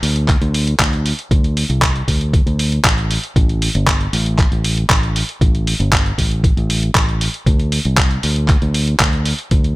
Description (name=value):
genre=nu-disco, nu disco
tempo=117 BPM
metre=4/4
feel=straight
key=unclear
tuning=A4 = 443 Hz
part: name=fingered electric bass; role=bass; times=0.0-9.8 s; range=G1 to D2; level=-17 LUFS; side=equal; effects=none
part: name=dusty soul sampler-style drum kit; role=drums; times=0.0-9.7 s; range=handclaps, hi-hat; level=-19 LUFS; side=equal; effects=none
part: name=electronic kick drum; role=drums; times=0.3-9.6 s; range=none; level=-15 LUFS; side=equal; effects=none
room=little or no reverb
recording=none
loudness=-14 LUFS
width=side -20 dB against mid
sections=0.0-9.8 A section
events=none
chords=none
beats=0.28 0.80 | 1.31 1.82 2.34 2.85 | 3.36 3.88 4.39 4.90 | 5.41 5.93 6.44 6.95 | 7.46 7.98 8.49 9.00 | 9.52